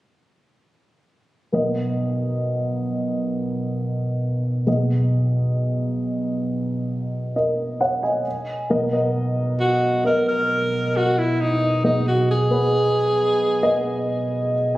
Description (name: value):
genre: pop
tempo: 67 BPM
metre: 4/4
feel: straight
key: B major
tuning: A4 = 439 Hz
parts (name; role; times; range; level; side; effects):
- dark upright piano; accompaniment; 1.5-14.8 s; B1 to G#5; -20 LUFS; equal; none
- clear alto saxophone; melody; 9.6-14.0 s; D#4 to A#4; -20 LUFS; equal; none
room: moderate recital hall reverb, RT60 1.4 s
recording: recorded on a phone in the room, studio reverb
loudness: -19 LUFS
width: side -16 dB against mid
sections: 1.5-8.7 A section; 8.7-14.8 B section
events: none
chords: 1.5 Bmaj7; 4.7 G#m/B; 8.3 N.C.; 8.7 Bmaj7; 11.8 G#m/B